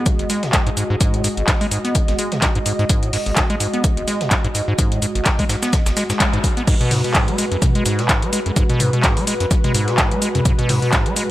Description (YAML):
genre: acid house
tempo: 127 BPM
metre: 4/4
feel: swing 56% on 16ths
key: G# minor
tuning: A4 = 437 Hz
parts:
  - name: warm analog pad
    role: sustained chords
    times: 0.0-11.3 s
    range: G#3 to D#5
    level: -25 LUFS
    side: equal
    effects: chorus, sidechain pumping
  - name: acid bass, square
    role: riff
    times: 0.0-11.2 s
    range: G#1 to B3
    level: -21 LUFS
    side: equal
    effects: overdrive, vintage 12-bit sampler grit, analog delay
  - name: booming analog drum machine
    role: drums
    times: 0.1-11.3 s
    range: crash cymbal, handclaps, hi-hat, toms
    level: -21 LUFS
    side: left 1 dB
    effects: none
  - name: breakbeat sampler-style drum kit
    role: drums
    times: 0.1-11.3 s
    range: hi-hat, shaker, snare drum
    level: -28 LUFS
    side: right 1 dB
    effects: sidechain pumping on perc, high-pass filter on perc, high-pass filter on snare, sidechain pumping on hats, high-pass filter on hats, high-pass filter on room
  - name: electronic kick drum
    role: drums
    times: 0.1-11.0 s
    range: none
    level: -18 LUFS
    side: equal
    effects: overdrive
  - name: swell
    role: sound effects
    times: 6.0-6.7 s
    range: none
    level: -30 LUFS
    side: left 8 dB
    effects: none
room: light reverb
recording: none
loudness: -16 LUFS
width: side -15 dB against mid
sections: 0.0-6.7 A section; 6.7-11.3 B section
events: swell 6.0-6.7; band accent 6.2; drop 6.7-11.3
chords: 0.0 G#7(no3); 6.7 G#m7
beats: 0.06 0.53 | 1.00 1.48 1.95 2.42 | 2.90 3.37 3.84 4.31 | 4.79 5.26 5.73 6.20 | 6.67 7.15 7.62 8.09 | 8.56 9.04 9.51 9.98 | 10.45 10.93